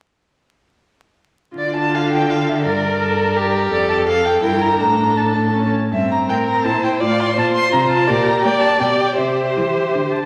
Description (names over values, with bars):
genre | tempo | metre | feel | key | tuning
quick classical-period movement for string quartet | 165 BPM | 3/4 | rubato | D minor | A4 = 440 Hz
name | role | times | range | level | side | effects
warm violin | melody | 1.6-10.3 s | D5 to C6 | -22 LUFS | equal | none
warm viola | accompaniment | 1.6-10.1 s | C4 to Bb4 | -24 LUFS | equal | none
rich cello | bass | 1.6-10.3 s | F2 to Bb3 | -24 LUFS | equal | none
rich violin | second line | 1.9-10.1 s | G4 to D5 | -23 LUFS | equal | none
room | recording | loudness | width
wet scoring stage reverb, RT60 1.4 s | vinyl crackle | -17 LUFS | mono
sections
1.6-10.3 A section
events
none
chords
1.6 Dm; 2.7 Gm; 3.7 F69; 4.4 Edim/G; 4.8 D5/A; 5.5 A; 5.9 C7/G; 7.0 F/A; 8.1 Gm/Bb; 8.8 G/B; 9.2 C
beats
| 1.56 1.93 2.30 | 2.66 3.01 3.37 | 3.72 4.08 4.44 | 4.80 5.18 5.55 | 5.92 6.29 6.65 | 7.01 7.37 7.73 | 8.09 8.45 8.81 | 9.19 9.57 9.95